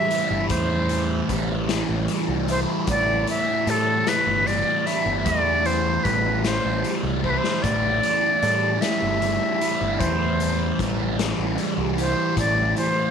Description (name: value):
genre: psychedelic rock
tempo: 50 BPM (dotted quarters)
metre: 6/8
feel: straight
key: A minor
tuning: A4 = 440 Hz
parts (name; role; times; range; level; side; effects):
- breathy bright concert flute; melody; 0.0-13.1 s; A4 to E5; -23 LUFS; equal; slapback echo
- thick fuzz guitar; riff; 0.0-13.1 s; A2 to E4; -24 LUFS; right 1 dB; distortion, phaser
- raw garage drum kit; drums; 0.1-13.0 s; hi-hat, kick drum, snare drum; -30 LUFS; left 6 dB; none
- growling picked electric bass; bass; 0.3-12.7 s; G1 to A2; -27 LUFS; equal; overdrive
room: light reverb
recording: 1960s-style stereo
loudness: -20 LUFS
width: side -7 dB against mid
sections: 0.0-13.1 A section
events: drum fill 7.2-7.6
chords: 0.0 Am7